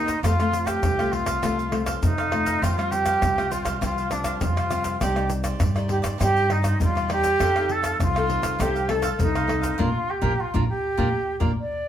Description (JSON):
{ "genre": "samba and choro", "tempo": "100 BPM", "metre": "4/4", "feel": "straight", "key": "unclear", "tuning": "A4 = 440 Hz", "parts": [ { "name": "concert flute", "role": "melody", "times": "0.0-11.9 s", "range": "D4 to D5", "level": "-24 LUFS", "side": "right 1 dB", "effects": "none" }, { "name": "cavaquinho", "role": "accompaniment", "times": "0.0-11.5 s", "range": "Eb4 to F5", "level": "-34 LUFS", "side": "right 4 dB", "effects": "none" }, { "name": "nylon-string guitar", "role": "accompaniment", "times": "0.0-11.5 s", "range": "C3 to D5", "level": "-29 LUFS", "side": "left 3 dB", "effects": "none" }, { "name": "upright bass", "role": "bass", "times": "0.0-11.5 s", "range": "Bb1 to G2", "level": "-27 LUFS", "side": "equal", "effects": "none" }, { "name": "tube shaker, surdo, pandeiro and tamborim", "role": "percussion", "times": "0.1-11.6 s", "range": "none", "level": "-28 LUFS", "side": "equal", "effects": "none" } ], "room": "wet studio reverb, RT60 0.8 s", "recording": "band playing live in one room", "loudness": "-21 LUFS", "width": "side -10 dB against mid", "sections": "0.0-11.9 A section", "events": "band accent 9.8-11.9", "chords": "0.2 F; 2.6 Fsus2; 5.0 Cmadd9; 7.4 F7; 9.8 Bb" }